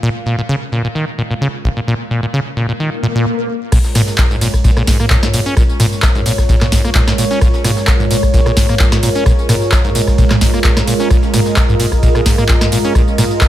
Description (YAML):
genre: acid house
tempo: 130 BPM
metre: 4/4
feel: swing 53% on 16ths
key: Bb minor pentatonic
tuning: A4 = 440 Hz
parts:
  - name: warm analog pad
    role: sustained chords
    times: 0.0-13.5 s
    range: Ab3 to F5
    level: -20 LUFS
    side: right 2 dB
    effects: chorus, sidechain pumping
  - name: acid bass, saw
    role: riff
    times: 0.0-13.3 s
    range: Bb1 to Db4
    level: -17 LUFS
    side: equal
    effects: sidechain pumping, digital delay
  - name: swell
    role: sound effects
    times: 2.9-3.7 s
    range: none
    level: -20 LUFS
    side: left 3 dB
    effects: none
  - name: booming analog drum machine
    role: drums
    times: 3.7-13.5 s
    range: crash cymbal, handclaps, hi-hat, ride cymbal, rim click, snare drum, tambourine, toms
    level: -17 LUFS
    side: equal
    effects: none
  - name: breakbeat sampler-style drum kit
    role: drums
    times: 3.7-13.5 s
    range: ride cymbal, snare drum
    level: -31 LUFS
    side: right 1 dB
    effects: none
  - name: electronic kick drum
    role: drums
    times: 3.7-13.5 s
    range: none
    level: -13 LUFS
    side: equal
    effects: none
room: light reverb, digital ambience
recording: none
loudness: -11 LUFS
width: side -13 dB against mid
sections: 0.0-3.7 A section; 3.7-13.5 B section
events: swell 2.9-3.7; stop 3.3-3.7; drop 3.7-13.5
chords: 0.0 Bb7(no3); 3.7 Bbm7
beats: | 0.03 0.49 0.95 1.41 | 1.88 2.34 2.80 3.26 | 3.72 4.18 4.64 5.11 | 5.57 6.03 6.49 6.95 | 7.41 7.88 8.34 8.80 | 9.26 9.72 10.18 10.64 | 11.11 11.57 12.03 12.49 | 12.95 13.41